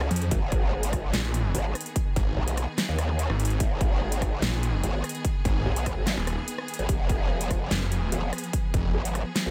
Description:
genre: heavy wobble dubstep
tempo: 146 BPM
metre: 4/4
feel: half-time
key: unclear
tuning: A4 = 440 Hz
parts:
  - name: clear studio string section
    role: sustained chords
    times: 0.0-9.5 s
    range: Eb3 to Ab4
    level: -38 LUFS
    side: equal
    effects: sidechain pumping
  - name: growl bass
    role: bass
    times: 0.0-9.5 s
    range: F1 to Eb2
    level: -30 LUFS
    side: equal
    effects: chorus, overdrive
  - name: dubstep drum kit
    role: drums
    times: 0.0-9.4 s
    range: handclaps, hi-hat, rim click, snare drum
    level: -33 LUFS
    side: equal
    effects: studio reverb
  - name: snarling distorted saw bass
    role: bass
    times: 0.1-8.9 s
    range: Eb1 to F2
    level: -29 LUFS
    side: equal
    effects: distortion, overdrive
  - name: electronic kick drum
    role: drums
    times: 0.3-8.8 s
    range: none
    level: -30 LUFS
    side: equal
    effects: overdrive, studio reverb
room: digital ambience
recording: none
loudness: -27 LUFS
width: mono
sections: 0.0-9.5 A section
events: break 0.0-0.3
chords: 0.3 Abm; 6.9 Fdim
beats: | 0.31 0.72 1.14 1.55 | 1.96 2.37 2.78 3.19 | 3.60 4.01 4.42 4.83 | 5.25 5.66 6.07 6.48 | 6.89 7.30 7.71 8.12 | 8.53 8.94 9.36

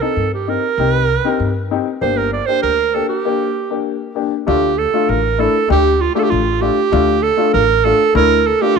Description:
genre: klezmer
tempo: 98 BPM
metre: 2/4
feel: straight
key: G minor, D minor from 4.5 s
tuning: A4 = 440 Hz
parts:
  - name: bright clarinet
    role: melody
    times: 0.0-8.8 s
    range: F4 to D5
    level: -16 LUFS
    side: right 8 dB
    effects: none
  - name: warm upright piano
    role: accompaniment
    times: 0.0-8.8 s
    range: A3 to A4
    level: -19 LUFS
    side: left 14 dB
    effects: none
  - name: upright bass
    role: bass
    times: 0.2-8.8 s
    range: G1 to G2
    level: -20 LUFS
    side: left 2 dB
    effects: none
room: moderate plate reverb, RT60 2.7 s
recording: 1960s-style stereo with parts hard left and right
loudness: -13 LUFS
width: side -5 dB against mid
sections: 0.0-4.5 A section; 4.5-8.8 B section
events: break 3.2-4.5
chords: 0.0 Cm; 2.0 Gm; 4.5 Dm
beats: 0.17 | 0.79 1.40 | 2.02 2.63 | 3.25 3.86 | 4.48 5.09 | 5.70 6.31 | 6.92 7.53 | 8.14 8.76

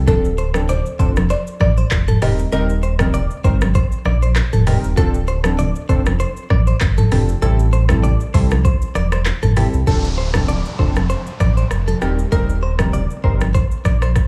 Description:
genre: afrobeats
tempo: 98 BPM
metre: 4/4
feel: swing 55% on 16ths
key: D minor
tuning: A4 = 441 Hz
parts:
  - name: sub bass with octave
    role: bass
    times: 0.0-14.2 s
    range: D1 to C2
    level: -20 LUFS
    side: equal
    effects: none
  - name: buzzing marimba with medium mallets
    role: melody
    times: 0.1-4.6 s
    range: A4 to Eb5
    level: -28 LUFS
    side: equal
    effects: none
  - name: warm analog keys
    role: accompaniment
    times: 0.1-13.4 s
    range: F3 to Bb4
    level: -26 LUFS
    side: equal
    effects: chorus
  - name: direct-recorded clean electric guitar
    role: riff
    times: 0.1-14.1 s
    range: G4 to D5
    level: -29 LUFS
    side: equal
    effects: spring reverb, tape echo
  - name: afro-pop drum kit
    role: drums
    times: 0.1-14.3 s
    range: handclaps, hi-hat, kick drum, rim click, shaker, toms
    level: -20 LUFS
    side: equal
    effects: none
  - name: congas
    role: percussion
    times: 0.1-14.0 s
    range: none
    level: -28 LUFS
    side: equal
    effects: none
  - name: downlifter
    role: sound effects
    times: 9.9-14.3 s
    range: none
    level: -34 LUFS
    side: equal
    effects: none
room: little or no reverb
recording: studio ambience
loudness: -17 LUFS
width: mono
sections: 0.0-9.9 A section; 9.9-14.3 B section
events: none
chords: 0.1 Dm7; 2.2 Eb6; 5.0 Dm7; 7.4 Am7; 9.9 Dm7; 12.0 Eb6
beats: | 0.08 0.69 1.30 1.91 | 2.52 3.14 3.75 4.36 | 4.97 5.59 6.20 6.81 | 7.42 8.04 8.65 9.26 | 9.87 10.48 11.10 11.71 | 12.32 12.93 13.54 14.16

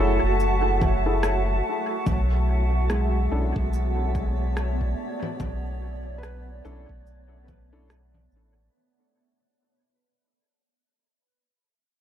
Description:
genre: ambient dub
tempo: 72 BPM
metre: 4/4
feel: swing 58% on 16ths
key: unclear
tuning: A4 = 440 Hz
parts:
  - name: granular cloud pad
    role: sustained chords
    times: 0.0-8.7 s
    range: B3 to A5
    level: -29 LUFS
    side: right 1 dB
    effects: built-in reverb
  - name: felt-muted upright piano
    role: arpeggios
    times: 0.0-9.7 s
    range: G#3 to C#5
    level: -35 LUFS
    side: right 1 dB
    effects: dub echo
  - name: warm upright piano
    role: stabs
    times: 0.0-7.9 s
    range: C#4 to A4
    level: -29 LUFS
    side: left 3 dB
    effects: dub echo
  - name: soft dub sub bass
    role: bass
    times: 0.0-8.7 s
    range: F#1 to B1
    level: -25 LUFS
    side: equal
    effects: none
  - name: wind-like tuned noise texture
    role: texture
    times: 0.0-8.8 s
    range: A3 to A5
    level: -36 LUFS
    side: equal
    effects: built-in reverb
  - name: electronic shaker, congas and rim click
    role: drums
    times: 0.4-8.5 s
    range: none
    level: -34 LUFS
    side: left 1 dB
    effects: dub echo
  - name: electronic kick drum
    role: drums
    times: 0.8-7.7 s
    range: none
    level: -28 LUFS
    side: equal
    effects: none
room: little or no reverb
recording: dark, warm production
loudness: -22 LUFS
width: side -10 dB against mid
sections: 0.0-8.7 A section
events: fade-out 0.0-8.7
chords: 0.0 F#m9; 2.1 Bm11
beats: 0.40 1.23 | 2.07 2.90 3.73 4.57 | 5.40 6.23 7.07 7.90

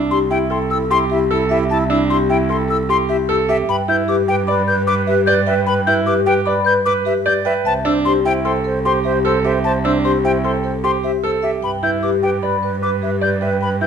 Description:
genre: classical, minimalist pattern music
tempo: 151 BPM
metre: 5/4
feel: straight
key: C major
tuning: A4 = 440 Hz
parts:
  - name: alto flute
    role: second line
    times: 0.0-13.9 s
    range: E4 to C5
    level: -24 LUFS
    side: right 4 dB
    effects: none
  - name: warm concert grand piano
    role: arpeggios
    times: 0.0-13.9 s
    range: D4 to D5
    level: -21 LUFS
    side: right 4 dB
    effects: none
  - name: dark cello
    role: bass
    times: 0.0-13.9 s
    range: C2 to G2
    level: -22 LUFS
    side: right 3 dB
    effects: none
  - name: vibraphone with soft mallets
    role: melody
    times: 0.1-13.9 s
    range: G4 to B5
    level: -22 LUFS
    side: left 9 dB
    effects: none
  - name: silver concert flute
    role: arpeggios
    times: 0.1-13.9 s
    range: E5 to G6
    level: -20 LUFS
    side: left 4 dB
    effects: none
room: light reverb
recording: close, detailed microphones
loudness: -15 LUFS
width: side -7 dB against mid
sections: 0.0-13.9 A section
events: none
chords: 0.0 C; 3.7 G; 7.7 Cadd9; 11.6 G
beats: 0.11 0.50 0.90 1.30 | 1.70 2.09 2.49 2.89 3.29 | 3.68 4.08 4.48 4.88 5.27 | 5.67 6.07 6.46 6.86 7.26 | 7.66 8.05 8.45 8.85 9.25 | 9.64 10.04 10.44 10.84 11.23 | 11.63 12.03 12.43 12.82 13.22 | 13.62

